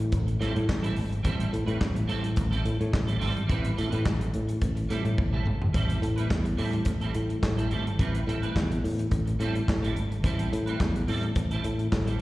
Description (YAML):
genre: disco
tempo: 107 BPM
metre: 4/4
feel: straight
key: A minor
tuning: A4 = 439 Hz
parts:
  - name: clean electric guitar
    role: accompaniment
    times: 0.0-12.2 s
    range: G3 to B4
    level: -34 LUFS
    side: right 4 dB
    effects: ensemble chorus, slapback echo
  - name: fingered electric bass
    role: bass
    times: 0.0-12.1 s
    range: G#1 to A2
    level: -27 LUFS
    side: equal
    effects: none
  - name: warm soul drum kit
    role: drums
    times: 0.0-12.2 s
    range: handclaps, hi-hat, kick drum, snare drum, toms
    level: -29 LUFS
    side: equal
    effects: none
room: little or no reverb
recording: live gig heard through the venue's PA, recital hall reverb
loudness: -25 LUFS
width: side -18 dB against mid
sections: 0.0-5.7 A section; 5.7-12.2 B section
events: drum fill 5.2-5.7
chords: 0.0 Am7